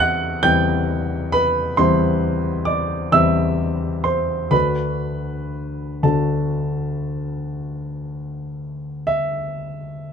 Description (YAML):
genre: classical, romantic nocturne for solo piano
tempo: 37-46 BPM (dotted quarters)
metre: 12/8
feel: rubato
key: unclear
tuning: A4 = 439 Hz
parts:
  - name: warm grand piano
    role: solo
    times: 0.0-10.1 s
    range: D2 to G6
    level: -19 LUFS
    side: equal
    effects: none
room: light reverb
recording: close, detailed microphones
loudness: -18 LUFS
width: side -7 dB against mid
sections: 0.0-10.1 A section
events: none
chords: 0.0 C/E; 4.5 D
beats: 0.46 1.78 3.13 | 4.54 6.05 7.58 9.09